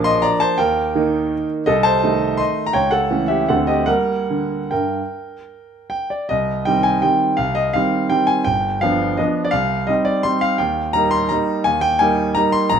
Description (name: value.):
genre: classical, piano waltz.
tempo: 142-178 BPM.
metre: 3/4.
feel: rubato.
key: G minor, C minor from 6.3 s.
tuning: A4 = 438 Hz.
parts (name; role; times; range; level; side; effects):
bright grand piano; solo; 0.0-12.8 s; G1 to D6; -16 LUFS; right 1 dB; none.
room: moderate large studio reverb, RT60 1.3 s.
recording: close, detailed microphones.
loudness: -16 LUFS.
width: side -7 dB against mid.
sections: 0.0-6.3 A section; 6.3-12.8 B section.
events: none.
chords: 0.0 Bb; 0.6 Eb; 1.7 Adim/C; 2.8 A7/C#; 3.5 D7; 3.9 Gm; 6.3 Cm; 8.5 G7; 9.5 Cm; 10.6 Eb.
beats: 0.24 | 0.60 0.96 1.32 | 1.68 2.03 2.40 | 2.75 3.10 3.48 | 3.88 4.29 4.71 | 5.11 5.50 5.91 | 6.30 6.66 7.03 | 7.39 7.74 8.11 | 8.47 8.82 9.19 | 9.54 9.89 10.26 | 10.61 10.96 11.31 | 11.66 12.01 12.36 | 12.71.